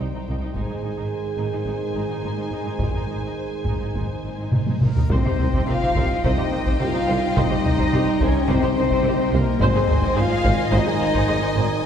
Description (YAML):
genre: cinematic, epic orchestral film score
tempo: 106 BPM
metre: 4/4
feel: straight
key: C minor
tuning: A4 = 439 Hz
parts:
  - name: warm symphonic violin section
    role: melody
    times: 0.0-11.9 s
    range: Bb4 to Ab5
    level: -33 LUFS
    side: left 2 dB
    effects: none
  - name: warm symphonic violin section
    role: second line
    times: 0.0-11.9 s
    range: C5 to Ab5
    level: -33 LUFS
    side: left 3 dB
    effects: none
  - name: warm symphonic viola section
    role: accompaniment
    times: 0.0-11.6 s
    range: Eb4 to C5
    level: -31 LUFS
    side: left 1 dB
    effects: none
  - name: mellow French horn section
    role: sustained chords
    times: 0.0-11.7 s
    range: Bb3 to F4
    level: -27 LUFS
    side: left 3 dB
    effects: none
  - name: warm trombone section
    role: sustained chords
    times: 0.0-11.9 s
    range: Eb3 to Eb4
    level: -29 LUFS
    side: right 3 dB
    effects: none
  - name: clear symphonic cello section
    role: bass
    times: 0.0-11.6 s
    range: C2 to C3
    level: -27 LUFS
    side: right 1 dB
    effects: none
  - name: rich symphonic double bass section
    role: bass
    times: 0.0-11.6 s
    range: Ab1 to C2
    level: -28 LUFS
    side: right 1 dB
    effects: none
  - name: taiko ensemble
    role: drums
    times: 0.5-11.7 s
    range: none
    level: -24 LUFS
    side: equal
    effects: none
  - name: reverse cymbal and sub drop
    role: sound effects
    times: 5.1-7.4 s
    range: none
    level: -30 LUFS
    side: left 1 dB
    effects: none
  - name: large flute ensemble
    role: second line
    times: 4.8-11.6 s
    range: Bb4 to F5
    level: -29 LUFS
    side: left 2 dB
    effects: none
  - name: clear tuba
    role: bass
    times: 5.1-11.6 s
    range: Ab1 to C2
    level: -29 LUFS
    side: right 1 dB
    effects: none
room: wet scoring stage reverb, RT60 1.7 s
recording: heard from further back in the room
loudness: -19 LUFS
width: side -8 dB against mid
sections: 0.0-5.1 A section; 5.1-11.9 B section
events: drum fill 4.5-5.1; reverse cymbal 5.1; impact 5.1-7.4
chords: 0.0 Cm; 0.6 Ab; 5.1 Cm; 9.6 Ab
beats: 0.01 | 0.56 1.12 1.68 2.24 | 2.81 3.39 3.96 4.53 | 5.11 5.68 6.25 6.81 | 7.37 7.93 8.49 9.05 | 9.61 10.17 10.73 11.29